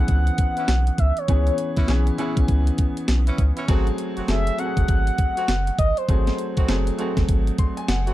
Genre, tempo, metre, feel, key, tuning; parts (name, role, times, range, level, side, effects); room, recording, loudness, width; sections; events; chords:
R&B, new jack swing; 100 BPM; 4/4; swing 62% on 16ths; C# minor; A4 = 441 Hz
mellow horn-like synth lead; melody; 0.0-6.9 s; B#4 to F#5; -26 LUFS; equal; chorus, phaser, digital delay
clear baby grand piano; accompaniment; 0.0-8.1 s; E3 to B#5; -27 LUFS; equal
round analog bass; bass; 0.0-8.1 s; F#1 to C#2; -21 LUFS; equal
clean 12-bit digital drum machine; drums; 0.1-8.1 s; hi-hat, kick drum, snare drum; -22 LUFS; equal; overdrive
warm horn section; stabs; 0.6-8.1 s; E3 to F#4; -34 LUFS; right 3 dB; digital delay
little or no reverb; dark, warm production; -19 LUFS; side -15 dB against mid
0.0-8.1 A section
grand piano fill 7.3-8.1
0.0 C#m7; 3.7 G#7b9